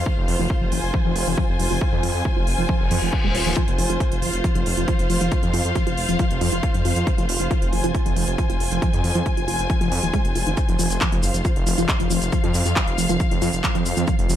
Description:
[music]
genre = driving peak-time techno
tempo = 137 BPM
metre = 4/4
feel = straight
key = F minor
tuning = A4 = 440 Hz
[part]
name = tight sequenced synth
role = riff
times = 0.0-14.4 s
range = Eb3 to Db4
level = -26 LUFS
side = right 1 dB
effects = chorus, phaser, sidechain pumping, digital delay
[part]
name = detuned saw bass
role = bass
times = 0.0-14.4 s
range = Eb1 to F2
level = -25 LUFS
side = equal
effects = sidechain pumping
[part]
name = rich studio string section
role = texture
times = 0.0-14.4 s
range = F4 to Ab5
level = -26 LUFS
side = equal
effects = sidechain pumping
[part]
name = electronic kick drum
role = drums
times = 0.1-14.2 s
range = none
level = -23 LUFS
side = equal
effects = none
[part]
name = techno drum kit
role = drums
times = 0.3-14.4 s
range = handclaps, hi-hat, shaker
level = -28 LUFS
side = right 1 dB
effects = sidechain pumping on hats, sidechain pumping on perc
[part]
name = reverse cymbal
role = sound effects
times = 2.9-3.6 s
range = none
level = -28 LUFS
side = left 4 dB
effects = none
[sound]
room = light reverb, digital ambience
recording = none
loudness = -18 LUFS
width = side -11 dB against mid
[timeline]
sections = 0.0-14.4 A section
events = filter sweep on synth arpeggio sound 0.0-14.4; reverse cymbal 2.9-3.6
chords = 0.0 F5

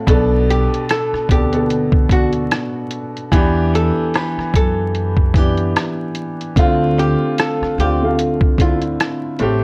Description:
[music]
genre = lo-fi hip hop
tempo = 74 BPM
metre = 4/4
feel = swing 58% on 16ths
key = unclear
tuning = A4 = 440 Hz
[part]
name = warm upright piano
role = accompaniment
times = 0.0-9.6 s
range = A2 to A4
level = -21 LUFS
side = equal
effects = cassette tape
[part]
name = upright bass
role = bass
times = 0.1-9.6 s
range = A1 to F#2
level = -23 LUFS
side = equal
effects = none
[part]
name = lo-fi sampler-style drum kit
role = drums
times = 0.1-9.6 s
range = hi-hat, kick drum, rim click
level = -18 LUFS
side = equal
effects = none
[part]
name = archtop guitar, miked and amplified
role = melody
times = 0.5-8.8 s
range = F4 to B4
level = -25 LUFS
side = equal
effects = none
[sound]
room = moderate studio reverb, RT60 0.6 s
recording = worn, warbling old tape, cassette tape, vinyl crackle, warbly pitch drift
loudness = -17 LUFS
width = mono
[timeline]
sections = 0.0-9.6 A section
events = none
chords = 0.1 Bm7; 3.3 Em7; 6.6 Dm7

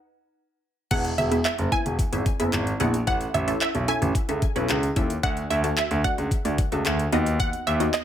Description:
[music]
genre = dance-pop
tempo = 111 BPM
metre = 4/4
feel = straight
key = E major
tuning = A4 = 441 Hz
[part]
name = wide unison pluck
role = melody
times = 0.9-8.0 s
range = D#5 to G#5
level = -28 LUFS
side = moving between left 5 dB and right 4 dB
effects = auto-pan, ping-pong delay
[part]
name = punchy chord stab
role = accompaniment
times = 0.9-8.0 s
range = A3 to F#5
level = -28 LUFS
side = left 1 dB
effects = chorus, sidechain pumping
[part]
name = warm grand piano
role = bass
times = 0.9-7.8 s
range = E1 to D#2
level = -25 LUFS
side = equal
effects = sidechain pumping
[part]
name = smooth R&B drum kit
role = drums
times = 0.9-8.0 s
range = crash cymbal, handclaps, hi-hat, kick drum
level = -27 LUFS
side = equal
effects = none
[sound]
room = digital ambience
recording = none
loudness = -22 LUFS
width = side -10 dB against mid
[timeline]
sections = 0.9-8.0 A section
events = break 0.0-0.9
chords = 0.0 N.C.; 0.9 E; 3.1 A; 5.2 D; 7.1 B

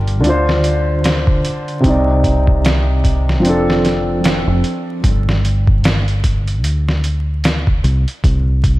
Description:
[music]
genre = trip hop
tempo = 75 BPM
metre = 4/4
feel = swing 58% on 16ths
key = unclear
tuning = A4 = 440 Hz
[part]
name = felt-muted upright piano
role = accompaniment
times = 0.0-5.1 s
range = C3 to D5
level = -17 LUFS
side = equal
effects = harmonic tremolo, tape echo
[part]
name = deep dub fingered electric bass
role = bass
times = 0.0-8.8 s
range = F1 to D2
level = -16 LUFS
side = equal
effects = none
[part]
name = trip hop sampler-style drum kit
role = drums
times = 0.1-8.8 s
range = hi-hat, kick drum, snare drum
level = -17 LUFS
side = equal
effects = studio ambience
[sound]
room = light reverb, digital ambience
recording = vinyl crackle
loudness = -13 LUFS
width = side -18 dB against mid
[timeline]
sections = 0.0-8.8 A section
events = filter sweep on felt piano 0.0-5.0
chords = 0.2 Dm7; 1.8 Cmadd9; 3.4 F6; 5.0 N.C.; 6.6 Csus2; 8.2 N.C.

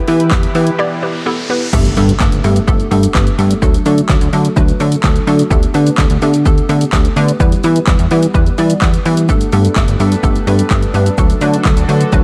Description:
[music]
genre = dance-pop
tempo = 127 BPM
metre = 4/4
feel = straight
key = G major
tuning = A4 = 441 Hz
[part]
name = chorused pulse-width pad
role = sustained chords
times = 0.0-1.7, 9.3-12.2 s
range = D3 to B4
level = -25 LUFS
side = equal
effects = sidechain pumping
[part]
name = riser and impact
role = sound effects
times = 0.5-3.6 s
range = none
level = -26 LUFS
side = equal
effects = none
[part]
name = hollow square pluck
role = accompaniment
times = 0.1-12.2 s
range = F#3 to D5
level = -20 LUFS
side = equal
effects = chorus, sidechain pumping
[part]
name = plucky analog bass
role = bass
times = 0.1-12.2 s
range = G1 to E3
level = -16 LUFS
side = equal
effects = sidechain pumping
[part]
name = punchy analog drum machine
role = drums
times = 0.1-12.2 s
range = crash cymbal, handclaps, hi-hat, kick drum, shaker, snare drum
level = -17 LUFS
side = equal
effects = none
[sound]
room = little or no reverb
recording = dark, warm production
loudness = -13 LUFS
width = mono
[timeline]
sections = 0.0-1.7 A section; 1.7-12.2 B section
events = riser 0.5-1.7; break 0.8-1.7; impact 1.7-3.6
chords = 0.0 Em; 1.7 Gadd9; 3.6 D; 5.5 Gadd9/D; 7.4 Em; 9.3 Gadd9; 11.2 D

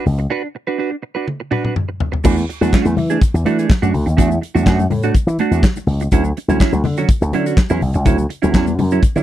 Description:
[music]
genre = disco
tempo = 124 BPM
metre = 4/4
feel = straight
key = unclear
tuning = A4 = 440 Hz
[part]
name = clean electric guitar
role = accompaniment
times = 0.0-9.2 s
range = F#3 to B4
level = -19 LUFS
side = right 6 dB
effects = wide subtle chorus
[part]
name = slap bass with an envelope filter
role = bass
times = 0.1-9.2 s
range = C2 to E3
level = -17 LUFS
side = equal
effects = none
[part]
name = modern studio drum kit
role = drums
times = 0.1-9.2 s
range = crash cymbal, handclaps, hi-hat, kick drum, snare drum, toms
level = -15 LUFS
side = equal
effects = none
[part]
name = congas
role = percussion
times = 0.1-9.2 s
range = none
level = -24 LUFS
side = left 6 dB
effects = none
[part]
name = tube shaker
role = percussion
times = 2.2-9.2 s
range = none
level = -39 LUFS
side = left 21 dB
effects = none
[sound]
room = little or no reverb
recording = dry, close 1970s-style studio recording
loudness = -14 LUFS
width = side -12 dB against mid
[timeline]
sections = 0.0-2.2 A section; 2.2-9.2 B section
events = break 0.3-2.2; drum fill 1.3-2.2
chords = 0.0 D6; 2.2 E9sus4; 6.1 Dmaj9

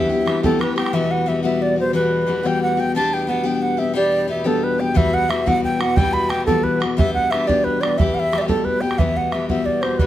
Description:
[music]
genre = celtic folk, Celtic jig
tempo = 119 BPM (dotted quarters)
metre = 6/8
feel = straight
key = E minor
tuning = A4 = 438 Hz
[part]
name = wooden flute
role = melody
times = 0.0-10.1 s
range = A4 to B5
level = -20 LUFS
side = right 2 dB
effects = plate reverb
[part]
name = concert harp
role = second line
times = 0.0-2.6 s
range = C4 to G4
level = -28 LUFS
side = right 1 dB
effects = none
[part]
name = picked steel-string acoustic guitar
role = accompaniment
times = 0.0-10.1 s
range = E3 to G4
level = -21 LUFS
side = left 4 dB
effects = none
[part]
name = bodhran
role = percussion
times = 0.3-0.9, 5.0-10.1 s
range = none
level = -22 LUFS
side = right 2 dB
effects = none
[part]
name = hand-pumped harmonium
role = drone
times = 0.9-10.1 s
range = E2 to B2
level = -28 LUFS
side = right 1 dB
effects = none
[sound]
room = moderate studio reverb, RT60 0.6 s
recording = none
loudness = -17 LUFS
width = side -12 dB against mid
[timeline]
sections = 0.9-9.0 A section; 9.0-10.1 A section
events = none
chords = 0.0 Em; 0.9 Emadd9; 2.9 G; 5.0 Emadd9; 7.0 G; 8.0 Em; 9.0 Emadd9

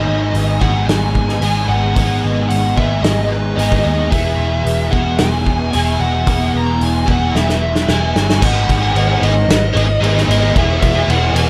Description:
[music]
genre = rock, shoegaze and dream pop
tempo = 112 BPM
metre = 4/4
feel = straight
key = unclear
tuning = A4 = 440 Hz
[part]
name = fuzz lead guitar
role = melody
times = 0.0-11.5 s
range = B4 to A#5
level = -23 LUFS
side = equal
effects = distortion, digital delay
[part]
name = overdriven electric guitar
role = riff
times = 0.0-11.5 s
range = E2 to G#4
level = -21 LUFS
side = equal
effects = ensemble chorus
[part]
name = vintage muted picked electric bass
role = bass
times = 0.0-11.5 s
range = E1 to D#2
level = -20 LUFS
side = equal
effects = none
[part]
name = loose indie drum kit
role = drums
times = 0.3-11.5 s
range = crash cymbal, hi-hat, kick drum, ride cymbal, snare drum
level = -21 LUFS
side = equal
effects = none
[sound]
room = light reverb, small room ambience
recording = none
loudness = -15 LUFS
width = mono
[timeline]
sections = 0.0-8.4 A section; 8.4-11.5 B section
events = drum fill 7.4-8.4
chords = 0.0 G#m; 4.1 Eadd9; 8.4 G#m7; 10.6 E

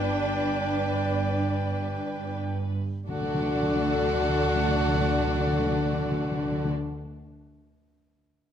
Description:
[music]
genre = cinematic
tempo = 47 BPM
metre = 3/4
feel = rubato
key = D major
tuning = A4 = 442 Hz
[part]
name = warm studio violin section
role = melody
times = 0.0-6.7 s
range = B4 to D5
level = -38 LUFS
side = left 4 dB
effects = none
[part]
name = clear clarinet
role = second line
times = 0.0-6.7 s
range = A4 to D5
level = -35 LUFS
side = left 2 dB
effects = none
[part]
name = rich studio violin section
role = second line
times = 0.0-6.7 s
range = F#4 to B4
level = -35 LUFS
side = left 5 dB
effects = none
[part]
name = warm cor anglais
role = second line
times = 0.0-6.7 s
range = F#5 to G5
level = -34 LUFS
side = right 2 dB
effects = none
[part]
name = warm studio viola section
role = accompaniment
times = 0.0-6.7 s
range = D4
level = -32 LUFS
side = right 1 dB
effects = none
[part]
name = dark French horn section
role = sustained chords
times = 0.0-6.7 s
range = A3 to F#4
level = -34 LUFS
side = left 4 dB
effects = none
[part]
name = warm studio cello section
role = bass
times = 0.0-6.7 s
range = G2 to D3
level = -32 LUFS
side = right 3 dB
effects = none
[part]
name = warm studio double bass section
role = bass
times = 0.0-6.7 s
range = G1 to D2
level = -33 LUFS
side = right 3 dB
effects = none
[part]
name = timpani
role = percussion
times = 3.1-6.7 s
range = D3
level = -30 LUFS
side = left 3 dB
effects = none
[sound]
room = moderate recital hall reverb, RT60 1.6 s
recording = close, detailed microphones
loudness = -24 LUFS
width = side -9 dB against mid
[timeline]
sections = 0.0-3.1 A section; 3.1-7.0 B section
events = slowing down 0.0-3.1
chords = 0.0 G; 3.1 D

